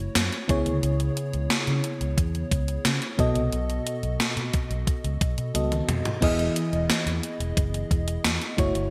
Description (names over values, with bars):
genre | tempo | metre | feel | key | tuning
1980s-style pop | 89 BPM | 4/4 | straight | E major | A4 = 440 Hz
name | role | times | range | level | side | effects
FM electric piano with soft pad layer | accompaniment | 0.0-8.9 s | B2 to D#5 | -30 LUFS | equal | chorus, tremolo
vintage muted fingered electric bass | bass | 0.0-8.9 s | E1 to C#3 | -30 LUFS | equal | none
gated 80s digital drum machine | drums | 0.2-8.9 s | crash cymbal, hi-hat, kick drum, snare drum, tambourine, toms | -28 LUFS | equal | gated reverb, gated reverb snare, overdrive
room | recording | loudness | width
moderate lush hall reverb, RT60 2.3 s | bright 1980s-style digital production | -26 LUFS | mono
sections
0.0-8.9 A section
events
drum fill 5.5-6.2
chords
0.5 C#m7; 3.2 B7; 6.2 Emaj7